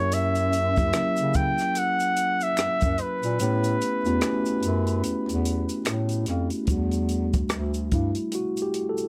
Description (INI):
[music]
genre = R&B, neo-soul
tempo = 73 BPM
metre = 4/4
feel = swing 59% on 16ths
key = unclear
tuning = A4 = 440 Hz
[part]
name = warm flugelhorn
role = melody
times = 0.0-5.9 s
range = B4 to G5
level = -28 LUFS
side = equal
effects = tape echo
[part]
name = mellow tine electric piano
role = accompaniment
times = 0.0-9.1 s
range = F#3 to A#4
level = -30 LUFS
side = equal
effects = none
[part]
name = breathy bass clarinet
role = bass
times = 0.0-8.1 s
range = D2 to C#3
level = -29 LUFS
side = equal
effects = none
[part]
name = compact cocktail drum kit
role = drums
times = 0.1-9.1 s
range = hi-hat, kick drum, rim click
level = -31 LUFS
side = equal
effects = none
[part]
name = tube shaker and finger snaps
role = percussion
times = 0.1-9.1 s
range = none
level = -41 LUFS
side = equal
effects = none
[sound]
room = little or no reverb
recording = none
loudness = -25 LUFS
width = mono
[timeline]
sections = 0.0-6.7 A section; 6.7-9.1 B section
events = kick muted 3.4-6.7; tine electric piano solo 6.7-9.1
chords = 0.0 F#7b9; 3.4 A9; 6.7 Em11